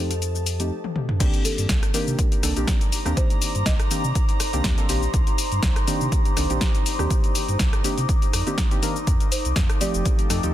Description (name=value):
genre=deep house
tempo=122 BPM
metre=4/4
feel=swing 54% on 16ths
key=C dorian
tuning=A4 = 439 Hz
part: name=deep dark ambient pad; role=sustained chords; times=2.6-10.5 s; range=G4 to Eb6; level=-32 LUFS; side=left 1 dB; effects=chorus, built-in reverb, sidechain pumping
part: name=deep mellow chord stab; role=stabs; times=0.0-10.5 s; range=Eb3 to Bb4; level=-29 LUFS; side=equal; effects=chorus, sidechain pumping, ping-pong delay
part: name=sub bass with octave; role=bass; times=0.0-10.5 s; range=F1 to C3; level=-25 LUFS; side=equal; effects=sidechain pumping
part: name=airy breathy pad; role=texture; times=0.0-10.5 s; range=Eb4 to Bb5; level=-34 LUFS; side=equal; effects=chorus, sidechain pumping
part: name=dark studio violin section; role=texture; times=0.0-0.7 s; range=A5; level=-48 LUFS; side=equal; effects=none
part: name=deep house drum kit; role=drums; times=0.1-10.5 s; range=cabasa, crash cymbal, hi-hat, rim click, snare drum, toms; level=-27 LUFS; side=left 2 dB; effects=overdrive
part: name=electronic kick drum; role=drums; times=1.2-10.2 s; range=none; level=-22 LUFS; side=equal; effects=none
part: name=buzzing marimba with soft mallets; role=melody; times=1.4-4.9, 9.3-10.5 s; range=A4 to Eb5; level=-33 LUFS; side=right 1 dB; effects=ping-pong delay
room=little or no reverb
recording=dense, heavily limited modern master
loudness=-20 LUFS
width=side -12 dB against mid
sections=0.0-1.2 A section; 1.2-10.5 B section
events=drum fill 0.8-1.2; drop 1.2-10.5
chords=0.0 F9; 1.2 Cm9; 9.1 F9